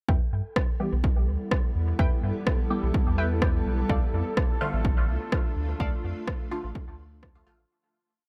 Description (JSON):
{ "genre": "dub techno", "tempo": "126 BPM", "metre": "4/4", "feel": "swing 53% on 16ths", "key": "E phrygian", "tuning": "A4 = 441 Hz", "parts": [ { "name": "granular cloud pad", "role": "sustained chords", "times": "1.3-7.7 s", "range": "G3 to F4", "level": "-37 LUFS", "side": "equal", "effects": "built-in reverb, sidechain pumping" }, { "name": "warbly dusty pluck", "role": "riff", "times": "0.1-5.9 s", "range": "A4 to G5", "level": "-40 LUFS", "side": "equal", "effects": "subtle chorus, cassette tape, sidechain pumping, dub echo" }, { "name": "soft dub sub bass", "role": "bass", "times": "0.1-7.6 s", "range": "A1 to G2", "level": "-30 LUFS", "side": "equal", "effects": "sidechain pumping" }, { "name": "electronic kick drum", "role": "drums", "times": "0.1-7.3 s", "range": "none", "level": "-28 LUFS", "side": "equal", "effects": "none" }, { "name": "bubbling stepped-filter texture", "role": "texture", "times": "0.1-7.7 s", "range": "A4", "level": "-41 LUFS", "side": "equal", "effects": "chorus, built-in reverb, sidechain pumping" }, { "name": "electronic rim click", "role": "drums", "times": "0.6-7.3 s", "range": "none", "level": "-35 LUFS", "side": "equal", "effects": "overdrive, dub echo" }, { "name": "filtered dub chord stab", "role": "stabs", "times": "0.8-7.7 s", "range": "D3 to G4", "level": "-36 LUFS", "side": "equal", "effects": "phaser, sidechain pumping, dub echo" } ], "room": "little or no reverb", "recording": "none", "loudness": "-26 LUFS", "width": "mono", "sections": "0.1-7.7 groove", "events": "fade-out 5.2-7.7", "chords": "0.1 Em; 3.9 Dm" }